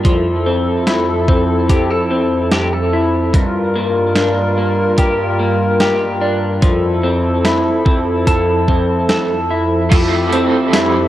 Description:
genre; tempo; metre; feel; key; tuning
dream pop; 73 BPM; 4/4; straight; F major; A4 = 440 Hz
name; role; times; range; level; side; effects
electric guitar through a small old amp; arpeggios; 0.0-11.1 s; G2 to A4; -16 LUFS; left 1 dB; analog chorus, digital delay
hollow soft pad; sustained chords; 0.1-11.1 s; F2 to Bb4; -17 LUFS; equal; chorus
clean 12-bit digital drum machine; drums; 0.1-10.9 s; crash cymbal, hi-hat, kick drum, snare drum, tambourine; -16 LUFS; equal; overdrive
raw garage guitar; accompaniment; 9.9-11.1 s; F3 to G4; -18 LUFS; right 4 dB; overdrive, tremolo, wide subtle chorus
room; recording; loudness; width
moderate plate reverb, RT60 2.8 s; worn, warbling old tape, cassette tape, warbly pitch drift; -13 LUFS; side -13 dB against mid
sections
0.0-9.9 A section; 9.9-11.1 B section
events
none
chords
0.1 Fmaj7; 3.3 Gm7; 6.6 Fmaj7; 9.9 Fmaj9

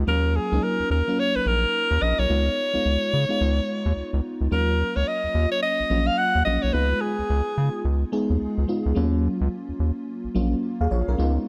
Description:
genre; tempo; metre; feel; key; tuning
R&B, new jack swing; 108 BPM; 4/4; swing 61% on 16ths; Eb minor; A4 = 444 Hz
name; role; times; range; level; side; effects
FM electric piano with soft pad layer; accompaniment; 0.0-11.5 s; Gb3 to F5; -29 LUFS; equal; chorus
round analog bass; bass; 0.0-11.4 s; Bb1 to Db3; -25 LUFS; equal; none
breathy alto saxophone; melody; 0.1-7.8 s; Ab4 to Gb5; -26 LUFS; equal; none
room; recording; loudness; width
light reverb, studio ambience; none; -23 LUFS; mono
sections
0.0-4.5 A section; 4.5-11.5 B section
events
none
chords
0.1 Ebm9; 2.3 Db7; 4.5 Ebm9; 6.7 Db7; 9.0 Ebm9

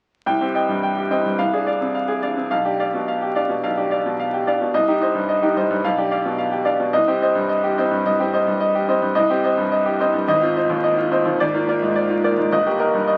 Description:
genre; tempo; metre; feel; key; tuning
classical, virtuoso piano study; 108 BPM; 4/4; rubato; C minor; A4 = 440 Hz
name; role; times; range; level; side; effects
bright grand piano; solo; 0.3-13.2 s; G1 to G5; -20 LUFS; equal; none
room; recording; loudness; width
moderate studio reverb, RT60 0.5 s; very old 78 rpm record, vinyl crackle; -20 LUFS; mono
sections
0.3-13.2 A section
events
none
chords
0.3 Cm; 1.4 Dm7b5/C; 2.5 G7/B; 4.7 Cm; 5.8 G7/B; 6.9 Cm; 10.3 Fm7/Ab; 11.4 Bb7/Ab; 12.5 Eb/G

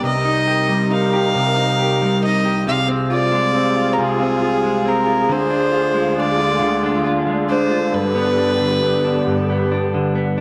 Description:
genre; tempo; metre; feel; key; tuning
six-eight pop ballad; 46 BPM (dotted quarters); 6/8; straight; C minor; A4 = 439 Hz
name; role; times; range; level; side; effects
warm violin; melody; 0.0-9.7 s; Ab4 to F5; -22 LUFS; equal; none
direct-recorded clean electric guitar; accompaniment; 0.0-10.4 s; G2 to G4; -22 LUFS; equal; double-tracked
muted studio string section; sustained chords; 0.0-10.4 s; C2 to Bb4; -24 LUFS; equal; none
room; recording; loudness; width
light reverb, studio reverb; none; -18 LUFS; mono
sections
0.0-10.4 A section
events
none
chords
0.0 Cm7; 2.7 Fm/C; 5.3 Ddim; 7.9 G

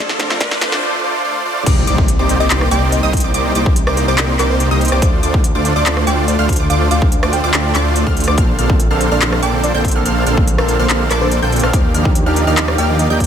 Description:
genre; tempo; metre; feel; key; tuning
future bass; 143 BPM; 4/4; half-time; C dorian; A4 = 442 Hz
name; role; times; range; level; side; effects
bell-like FM electric piano; melody; 0.0-13.2 s; Bb4 to G5; -24 LUFS; right 1 dB; chorus, sidechain pumping, tape echo
warm chamber string section; sustained chords; 0.0-0.8 s; none; barely audible; none; none
dense compressed supersaw; riff; 0.0-13.3 s; A3 to G5; -18 LUFS; right 1 dB; sidechain pumping, tape echo
riser and impact; sound effects; 0.0-3.3 s; none; -23 LUFS; left 1 dB; none
big-room dance drum kit; drums; 0.1-13.3 s; crash cymbal, handclaps, hi-hat, rim click, snare drum; -20 LUFS; left 1 dB; high-pass filter on hats, high-pass filter on snare, high-pass filter on cymbals, high-pass filter on room
overdriven tine electric piano; accompaniment; 0.2-0.8, 8.6-13.3 s; D3 to A4; -23 LUFS; right 4 dB; fast tremolo, sidechain pumping, tape echo
electronic kick drum; drums; 0.4-13.3 s; none; -15 LUFS; equal; none
wide unison pluck; arpeggios; 1.7-13.3 s; D6 to G6; -25 LUFS; moving between left 6 dB and right 6 dB; auto-pan, sidechain pumping
wide detuned saw bass; bass; 1.7-13.3 s; Bb1 to Eb2; -17 LUFS; equal; chorus, sidechain pumping
room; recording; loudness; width
light reverb, digital ambience; high-pass filter; -12 LUFS; side -8 dB against mid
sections
0.0-1.7 A section; 1.7-13.3 B section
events
build-up 0.0-1.7; drum fill 0.0-0.8; riser 0.0-0.8; drop 1.7-13.3; impact 1.7-3.3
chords
0.0 Dm7; 1.7 Cm9; 5.0 Dm7; 8.4 Bbmaj9; 11.7 Ebmaj9

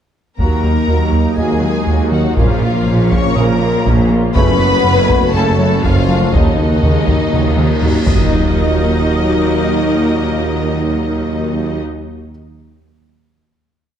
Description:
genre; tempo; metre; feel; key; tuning
cinematic, hybrid orchestral and electronic film score; 121 BPM; 4/4; straight; Eb minor; A4 = 441 Hz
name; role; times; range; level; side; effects
clear symphonic violin section; melody; 0.4-11.8 s; Eb5 to Db6; -24 LUFS; left 4 dB; none
rich studio violin section; second line; 0.4-11.8 s; Eb4 to Eb5; -23 LUFS; left 4 dB; none
warm symphonic viola section; accompaniment; 0.4-11.8 s; Eb3 to Gb4; -23 LUFS; right 1 dB; none
clear trombone section; sustained chords; 0.4-11.8 s; Bb2 to Bb3; -25 LUFS; right 4 dB; none
mellow French horn section; sustained chords; 0.4-11.8 s; Eb3 to Eb4; -22 LUFS; left 6 dB; none
sweeping resonant pad; sustained chords; 0.4-11.8 s; Db3 to Eb5; -21 LUFS; left 2 dB; chorus
round analog bass; riff; 0.4-8.0 s; Eb2 to Bb3; -18 LUFS; right 1 dB; none
clear symphonic double bass section; bass; 0.4-11.8 s; Gb1 to Eb2; -20 LUFS; right 3 dB; none
clear tuba; bass; 0.4-11.8 s; Gb1 to Eb2; -22 LUFS; right 3 dB; none
rich symphonic cello section; bass; 0.4-11.8 s; Eb2 to Bb2; -21 LUFS; right 2 dB; none
taiko ensemble; drums; 0.4-9.0 s; none; -19 LUFS; left 1 dB; none
clear grand piano; texture; 0.9-8.3 s; Bb4 to Eb6; -32 LUFS; left 2 dB; none
cymbal swell and impact; sound effects; 7.5-10.3 s; none; -22 LUFS; left 1 dB; none
room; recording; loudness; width
moderate scoring stage reverb, RT60 1.6 s; dark, warm production; -12 LUFS; side -9 dB against mid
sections
0.4-8.3 theme; 8.3-12.3 final hit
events
cymbal swell 7.5-8.3; drum fill 7.6-8.3; impact 8.3-10.3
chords
0.4 Ebm; 2.4 Bbm; 4.4 Gbm; 6.3 Ebm

